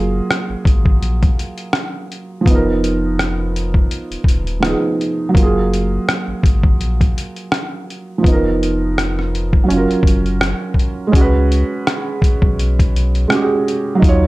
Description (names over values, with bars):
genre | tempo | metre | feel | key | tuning
lo-fi hip hop | 83 BPM | 4/4 | swing 57% on 16ths | F# major | A4 = 441 Hz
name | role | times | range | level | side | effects
felt-muted upright piano | accompaniment | 0.0-14.3 s | E#3 to C#5 | -18 LUFS | right 2 dB | low-pass filter, plate reverb
warm sub bass | bass | 0.0-14.3 s | D#1 to D#2 | -18 LUFS | equal | none
trip hop sampler-style drum kit | drums | 0.3-14.2 s | hi-hat, kick drum, rim click | -16 LUFS | equal | none
room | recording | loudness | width
light reverb | dark, warm production | -14 LUFS | side -19 dB against mid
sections
0.0-11.1 A section; 11.1-14.3 B section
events
none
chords
0.0 F#maj9; 2.5 G#m69; 5.3 F#maj9; 8.2 Bmaj7#11/E#; 9.7 F#maj7; 11.1 C#7sus4